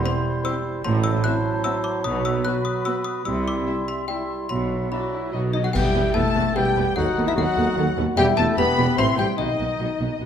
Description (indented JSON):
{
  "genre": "cinematic, playful, whimsical film cue",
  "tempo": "148 BPM",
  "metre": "3/4",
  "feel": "straight",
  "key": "E minor",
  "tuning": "A4 = 440 Hz",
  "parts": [
    { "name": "rich chamber violin section", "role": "melody", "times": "0.0-10.2 s", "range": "B4 to C6", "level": "-32 LUFS", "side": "left 6 dB", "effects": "none" },
    { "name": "trough xylophone with wooden mallets", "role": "melody", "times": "0.0-10.2 s", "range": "D#5 to F#6", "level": "-30 LUFS", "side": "left 5 dB", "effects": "none" },
    { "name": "clear oboe", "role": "second line", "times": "0.0-10.2 s", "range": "B4 to C6", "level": "-34 LUFS", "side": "right 1 dB", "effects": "none" },
    { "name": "mellow hollow concert flute", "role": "second line", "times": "0.0-10.2 s", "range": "D#5 to C6", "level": "-32 LUFS", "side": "left 2 dB", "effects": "none" },
    { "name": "warm clarinet", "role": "second line", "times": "0.0-10.2 s", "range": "D#4 to C5", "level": "-28 LUFS", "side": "equal", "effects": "none" },
    { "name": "mellow bassoon", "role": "accompaniment", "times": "0.0-10.3 s", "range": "F#3 to G4", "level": "-29 LUFS", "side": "equal", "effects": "none" },
    { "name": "rich studio viola section", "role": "accompaniment", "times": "0.0-10.3 s", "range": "F#3 to B4", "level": "-31 LUFS", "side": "equal", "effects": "none" },
    { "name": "mellow French horn section", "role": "sustained chords", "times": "0.0-10.2 s", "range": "D#3 to F#4", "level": "-29 LUFS", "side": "left 4 dB", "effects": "none" },
    { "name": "rich studio violin section", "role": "second line", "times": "0.1-10.2 s", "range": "E4 to C6", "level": "-34 LUFS", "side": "left 4 dB", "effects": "none" },
    { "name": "mellow tuba", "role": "bass", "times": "0.8-10.3 s", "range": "E1 to D#2", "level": "-31 LUFS", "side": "right 3 dB", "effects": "none" },
    { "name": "clear chamber cello section", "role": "bass", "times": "0.9-10.3 s", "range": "D#2 to C3", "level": "-29 LUFS", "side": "right 2 dB", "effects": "none" },
    { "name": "rich chamber double bass section", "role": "bass", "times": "0.9-10.3 s", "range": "E1 to D#2", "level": "-28 LUFS", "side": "right 3 dB", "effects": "none" },
    { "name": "cymbal swell, clash cymbals and concert bass drum", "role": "percussion", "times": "3.3-6.5 s", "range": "none", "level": "-31 LUFS", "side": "left 1 dB", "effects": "none" }
  ],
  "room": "wet scoring stage reverb, RT60 1.6 s",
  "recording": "dark, warm production",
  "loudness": "-20 LUFS",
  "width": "side -8 dB against mid",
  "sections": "0.0-5.7 A section; 5.7-10.3 B section",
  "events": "band accent 5.7-6.2",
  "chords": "0.0 C; 0.9 F#m7b5/A; 2.1 B5; 3.3 C; 4.5 Bsus4; 5.3 B; 5.7 Em; 7.0 B7/D#; 8.2 Em; 9.0 F#dim/A; 9.4 B"
}